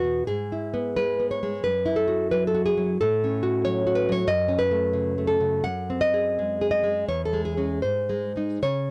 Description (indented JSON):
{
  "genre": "romantic piece for solo classical guitar",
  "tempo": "73-94 BPM",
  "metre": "2/4",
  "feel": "rubato",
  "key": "unclear",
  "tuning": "A4 = 435 Hz",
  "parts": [
    { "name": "nylon-string guitar", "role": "solo", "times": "0.0-8.9 s", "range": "E2 to F#5", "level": "-24 LUFS", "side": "equal", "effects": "none" }
  ],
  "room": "little or no reverb",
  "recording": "dry, gritty hardware recording",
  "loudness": "-25 LUFS",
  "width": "mono",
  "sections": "0.0-8.9 A section",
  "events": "none",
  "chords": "0.3 E/G#; 1.6 F#m11; 3.0 F#m/A; 4.3 F#madd11; 5.7 G#7/F#; 7.1 C#m/E; 7.8 G#"
}